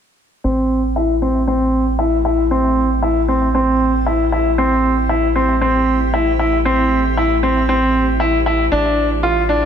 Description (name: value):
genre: electronica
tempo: 116 BPM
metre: 4/4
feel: straight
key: A minor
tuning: A4 = 440 Hz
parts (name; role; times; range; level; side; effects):
- granular cloud pad; sustained chords; 1.6-9.7 s; A3 to C5; -28 LUFS; equal; built-in reverb
- bright grand piano; riff; 0.4-9.7 s; C4 to F4; -15 LUFS; equal; low-pass filter, ping-pong delay
- round analog bass; bass; 0.4-9.7 s; A1; -20 LUFS; equal; none
room: light reverb, studio ambience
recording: none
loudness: -14 LUFS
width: side -8 dB against mid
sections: 0.4-9.7 A section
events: fade-in on ambient pad 0.4-9.7; filter sweep on grand piano 0.4-9.7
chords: 0.4 Am7; 8.7 Dmadd9/A